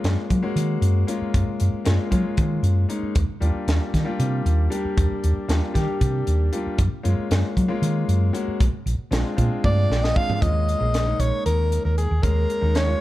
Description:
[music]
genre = electric jazz fusion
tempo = 231 BPM (eighths)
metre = 7/8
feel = straight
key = Eb major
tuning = A4 = 440 Hz
[part]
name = clear concert grand piano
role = accompaniment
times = 0.0-13.0 s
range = G3 to G5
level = -27 LUFS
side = left 2 dB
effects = none
[part]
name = hollow-body short-scale fingered electric bass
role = bass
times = 0.0-12.9 s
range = Bb1 to Gb3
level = -21 LUFS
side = equal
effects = none
[part]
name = crisp fusion drum kit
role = drums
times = 0.0-12.9 s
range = hi-hat, kick drum, snare drum, toms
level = -25 LUFS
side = equal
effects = none
[part]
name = breathy soprano saxophone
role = melody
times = 9.6-13.0 s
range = Ab4 to F5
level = -25 LUFS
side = equal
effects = none
[sound]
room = light reverb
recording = dark, warm production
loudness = -19 LUFS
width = side -16 dB against mid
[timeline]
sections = 0.0-10.4 A section; 10.4-13.0 B section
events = drum fill 9.6-10.4; grand piano fill 9.6-10.4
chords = 0.0 Gbmaj9; 3.2 Ebmaj9; 6.8 Gbmaj9; 8.6 Bb9; 10.4 Eb9sus4

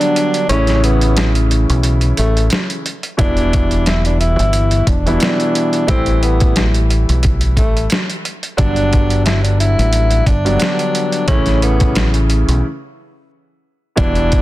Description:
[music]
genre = hip hop, boom-bap hip-hop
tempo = 89 BPM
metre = 4/4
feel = swing 55% on 16ths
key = unclear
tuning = A4 = 440 Hz
[part]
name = breathy tenor saxophone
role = melody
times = 0.0-14.4 s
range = A3 to E4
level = -20 LUFS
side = equal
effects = high-pass filter, low-pass filter, tape echo
[part]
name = dark baby grand piano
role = accompaniment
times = 0.0-14.4 s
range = B2 to E4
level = -19 LUFS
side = left 1 dB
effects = cassette tape, high-pass filter, low-pass filter
[part]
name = boom bap sampler-style drum kit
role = drums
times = 0.0-14.4 s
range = hi-hat, kick drum, snare drum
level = -18 LUFS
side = equal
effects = none
[part]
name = deep dub fingered electric bass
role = bass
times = 0.5-14.4 s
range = E1 to B1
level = -15 LUFS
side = equal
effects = none
[sound]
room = studio reverb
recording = dense, heavily limited modern master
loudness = -12 LUFS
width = side -16 dB against mid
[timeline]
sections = 0.0-14.4 A section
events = break 0.0-3.2, 12.6-14.0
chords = 0.5 A; 3.2 Em; 5.9 A5; 8.6 Gmaj7; 11.3 A

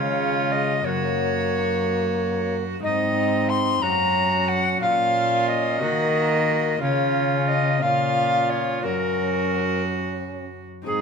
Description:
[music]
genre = classical, renaissance-style consort dance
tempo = 60 BPM (dotted quarters)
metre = 6/8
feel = straight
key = unclear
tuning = A4 = 440 Hz
[part]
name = bright tenor recorder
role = melody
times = 0.0-11.0 s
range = Ab4 to C6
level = -24 LUFS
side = left 3 dB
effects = none
[part]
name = rich viola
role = second line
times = 0.0-11.0 s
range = Eb4 to Gb4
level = -27 LUFS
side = right 5 dB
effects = none
[part]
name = concert harp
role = accompaniment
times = 0.0-11.0 s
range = Gb2 to Bb4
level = -30 LUFS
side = left 5 dB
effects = none
[part]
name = warm trombone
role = accompaniment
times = 0.0-11.0 s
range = Ab3 to Db4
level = -28 LUFS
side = right 1 dB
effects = none
[part]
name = rich cello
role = bass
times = 0.0-11.0 s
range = Gb2 to Eb3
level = -28 LUFS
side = right 3 dB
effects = none
[sound]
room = wet stone room reverb, RT60 1.4 s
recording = minimal, uncompressed stereo recording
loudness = -20 LUFS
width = side -5 dB against mid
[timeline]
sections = 0.0-10.9 A section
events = none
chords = 0.0 Db; 0.9 Gb; 2.8 Ab; 3.8 Gb; 4.8 Bbm; 5.8 Ebm; 6.8 Db; 7.8 Bbm; 8.8 Gb

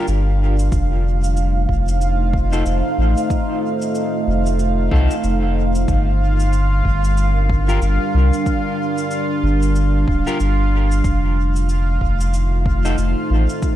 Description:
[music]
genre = ambient dub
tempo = 93 BPM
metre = 4/4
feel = swing 60% on 16ths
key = unclear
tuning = A4 = 440 Hz
[part]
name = deep dark ambient pad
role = sustained chords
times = 0.0-13.8 s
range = G3 to F5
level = -22 LUFS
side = right 1 dB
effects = chorus, built-in reverb
[part]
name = electric guitar at the edge of break-up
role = stabs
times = 0.0-13.0 s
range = Eb4 to Bb4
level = -29 LUFS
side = left 2 dB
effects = wide subtle chorus, dub echo
[part]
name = bubbling stepped-filter texture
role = texture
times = 0.1-13.8 s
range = F4 to F5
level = -28 LUFS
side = right 2 dB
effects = chorus, built-in reverb
[part]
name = warm sub bass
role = bass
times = 0.1-13.5 s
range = D1 to C2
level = -16 LUFS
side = equal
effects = none
[part]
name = cabasa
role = drums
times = 0.1-13.8 s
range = none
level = -39 LUFS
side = equal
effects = dub echo
[part]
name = electronic kick drum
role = drums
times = 0.7-13.8 s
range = none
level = -21 LUFS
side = equal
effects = none
[sound]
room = light reverb, digital ambience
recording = none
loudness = -15 LUFS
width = side -13 dB against mid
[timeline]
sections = 0.0-13.8 A section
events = none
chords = 0.0 Gm7; 0.7 F7; 5.9 Gm7; 11.0 F7

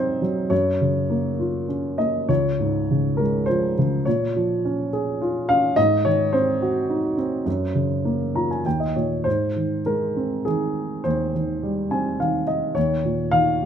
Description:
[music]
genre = classical, lyrical solo piano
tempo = 98-108 BPM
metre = 3/4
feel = rubato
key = Ab major from 9.3 s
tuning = A4 = 443 Hz
[part]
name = dark baby grand piano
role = solo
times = 0.0-13.7 s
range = Db2 to Bb5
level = -20 LUFS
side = equal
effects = none
[sound]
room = light reverb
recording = close, detailed microphones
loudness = -20 LUFS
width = side -8 dB against mid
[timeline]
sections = 0.0-9.3 A section; 9.3-13.7 B section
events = grand piano fill 8.1-9.3, 11.6-12.8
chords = 0.0 Ab7; 0.5 Gbmaj7; 2.3 Dbmaj7; 4.1 Bbm7; 5.8 Ab7; 7.5 Gbmaj7; 8.7 Eb5; 9.3 Abmaj7; 12.8 Eb7(no3)

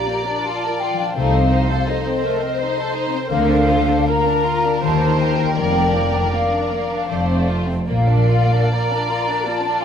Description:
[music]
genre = classical, slow romantic movement for symphony orchestra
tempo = 70-85 BPM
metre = 3/4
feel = rubato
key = Bb major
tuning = A4 = 440 Hz
[part]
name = warm studio violin section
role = melody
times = 0.0-9.8 s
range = Bb4 to D5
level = -26 LUFS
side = left 2 dB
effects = none
[part]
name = mellow flute section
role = second line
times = 0.0-9.8 s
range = Eb5 to Bb5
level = -22 LUFS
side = left 2 dB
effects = none
[part]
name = rich studio violin section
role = second line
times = 0.0-9.8 s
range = G3 to Bb4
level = -26 LUFS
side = left 1 dB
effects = none
[part]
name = dark studio viola section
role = accompaniment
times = 0.0-9.8 s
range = F4 to D5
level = -26 LUFS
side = right 1 dB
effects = none
[part]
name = concert harp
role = arpeggios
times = 0.0-9.8 s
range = Bb2 to D5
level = -25 LUFS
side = left 8 dB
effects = none
[part]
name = bright studio double bass section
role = bass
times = 1.2-8.6 s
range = F1 to Eb2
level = -24 LUFS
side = right 2 dB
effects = none
[part]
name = warm studio cello section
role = bass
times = 1.2-8.6 s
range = F2 to Eb3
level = -21 LUFS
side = right 1 dB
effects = none
[sound]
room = moderate scoring stage reverb, RT60 1.8 s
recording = none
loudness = -16 LUFS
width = side -8 dB against mid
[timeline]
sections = 0.0-9.8 A section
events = none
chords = 0.0 Bb; 1.2 Adim/C; 3.3 Bb/D; 4.8 Eb; 5.6 Bb/F; 7.1 F; 7.9 Bb

